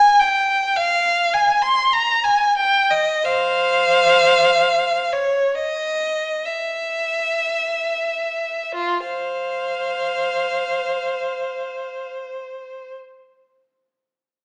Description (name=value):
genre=classical, free, expressive piece for unaccompanied violin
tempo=22-54 BPM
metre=3/4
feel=rubato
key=F minor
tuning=A4 = 440 Hz
part: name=warm violin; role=solo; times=0.0-13.0 s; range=F4 to C6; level=-20 LUFS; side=equal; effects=none
room=wet recital hall reverb, RT60 1.2 s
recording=small speaker sound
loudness=-19 LUFS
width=mono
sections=0.0-8.8 A section; 8.8-14.4 B section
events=slowing down 0.0-8.8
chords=none